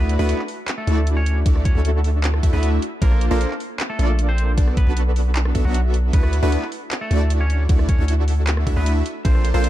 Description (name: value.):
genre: future bass.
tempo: 154 BPM.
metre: 4/4.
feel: half-time.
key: D major.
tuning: A4 = 439 Hz.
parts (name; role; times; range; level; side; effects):
twangy electric guitar; melody; 0.0-9.7 s; F#3 to C#5; -31 LUFS; equal; sidechain pumping, dub echo.
supersaw stab; riff; 0.0-9.7 s; A3 to E5; -25 LUFS; equal; sidechain pumping.
long sustained 808-style bass; bass; 0.0-9.7 s; Bb1 to D2; -18 LUFS; equal; sidechain pumping.
pop drum kit; drums; 0.0-9.7 s; handclaps, hi-hat, rim click; -30 LUFS; equal; small room ambience.
electronic kick drum; drums; 1.5-9.3 s; none; -18 LUFS; equal; overdrive, small room ambience.
room: little or no reverb.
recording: dark, warm production.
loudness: -17 LUFS.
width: side -14 dB against mid.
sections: 0.0-9.7 A section.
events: none.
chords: 0.0 D69; 2.8 Bbmaj9; 4.6 Bm7; 6.1 D69; 9.1 Bbmaj9.